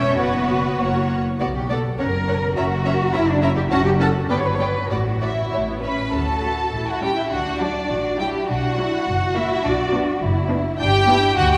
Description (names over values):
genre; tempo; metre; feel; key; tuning
quick classical-period movement for string orchestra; 102 BPM; 2/4; rubato; D major from 3.7 s; A4 = 440 Hz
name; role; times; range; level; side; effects
warm symphonic violin section; melody; 0.0-11.6 s; D5 to B5; -28 LUFS; equal; none
rich symphonic violin section; second line; 0.0-11.6 s; D4 to F#5; -28 LUFS; equal; none
rich symphonic viola section; accompaniment; 0.0-11.3 s; F#3 to F#4; -29 LUFS; equal; none
warm symphonic cello section; bass; 0.0-11.6 s; D4 to C#5; -26 LUFS; equal; none
warm symphonic double bass section; bass; 0.0-11.6 s; E1 to D2; -26 LUFS; equal; none
room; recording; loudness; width
wet church reverb, RT60 3.5 s; recorded in a church or concert hall; -21 LUFS; mono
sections
0.0-6.1 A section; 6.1-11.6 B section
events
none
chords
0.2 F#sus4; 0.8 F#; 1.4 B5; 2.0 F#; 2.6 F#7; 3.7 F#m; 4.3 G; 4.9 D/A (rootless); 5.5 A; 6.1 D; 6.7 A7; 7.3 D; 8.5 Bm; 9.1 F#7; 9.6 Bm; 10.8 G